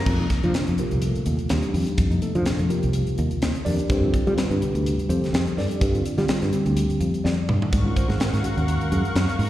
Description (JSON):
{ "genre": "electric jazz fusion", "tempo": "125 BPM", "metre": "4/4", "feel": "swing 54% on 16ths", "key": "unclear", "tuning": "A4 = 440 Hz", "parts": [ { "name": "rich symphonic string section", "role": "sustained chords", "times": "0.0, 7.7-9.5 s", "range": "Bb4 to Db6", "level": "-31 LUFS", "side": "left 1 dB", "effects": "none" }, { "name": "fretless electric bass", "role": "bass", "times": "0.0-9.5 s", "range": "C2 to G3", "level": "-23 LUFS", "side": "equal", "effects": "none" }, { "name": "crisp fusion drum kit", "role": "drums", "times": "0.1-9.5 s", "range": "crash cymbal, hi-hat, kick drum, snare drum, toms", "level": "-26 LUFS", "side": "equal", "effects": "none" }, { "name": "mellow reed electric piano", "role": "accompaniment", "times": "0.2-9.3 s", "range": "Bb2 to D5", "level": "-26 LUFS", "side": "right 1 dB", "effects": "fast tremolo, slapback echo" } ], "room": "small room ambience", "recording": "live gig heard through the venue's PA, recital hall reverb", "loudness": "-20 LUFS", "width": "side -14 dB against mid", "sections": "0.1-9.5 A section", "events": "reed electric piano fill 7.0-7.7; drum fill 7.2-7.7", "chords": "0.1 F13sus4; 3.9 G9sus4; 7.7 Ab13sus4" }